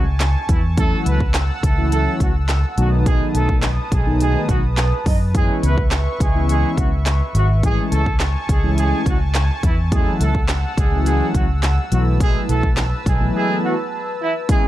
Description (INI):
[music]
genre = dance-pop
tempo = 105 BPM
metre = 4/4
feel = straight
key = unclear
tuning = A4 = 438 Hz
[part]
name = warm horn section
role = melody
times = 0.0-14.7 s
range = E3 to D#5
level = -25 LUFS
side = right 2 dB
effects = sidechain pumping, digital delay
[part]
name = mellow synth brass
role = accompaniment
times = 0.0-14.7 s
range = D#3 to E4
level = -24 LUFS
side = left 1 dB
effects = chorus, sidechain pumping
[part]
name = warm analog pad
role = sustained chords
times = 0.0-14.7 s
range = B4 to E6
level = -29 LUFS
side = equal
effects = chorus, sidechain pumping
[part]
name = vintage muted fingered electric bass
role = bass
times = 0.0-13.3 s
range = G#1 to F#2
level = -18 LUFS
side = equal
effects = sidechain pumping
[part]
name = downlifter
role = sound effects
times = 0.1-0.8 s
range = none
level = barely audible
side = none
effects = none
[part]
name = house drum kit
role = drums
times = 0.2-14.6 s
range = handclaps, hi-hat, kick drum, snare drum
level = -20 LUFS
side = equal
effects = none
[part]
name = group handclap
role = percussion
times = 0.2-12.9 s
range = none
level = -34 LUFS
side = right 9 dB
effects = none
[sound]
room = little or no reverb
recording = dark, warm production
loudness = -16 LUFS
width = side -14 dB against mid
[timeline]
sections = 0.0-14.5 A section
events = drop 0.0-14.5; break 13.3-14.5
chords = 0.0 Amaj7; 0.8 F#m7/C#; 2.8 B7; 5.3 C#m7; 7.6 Amaj7; 9.9 F#m7/C#; 11.9 B7sus4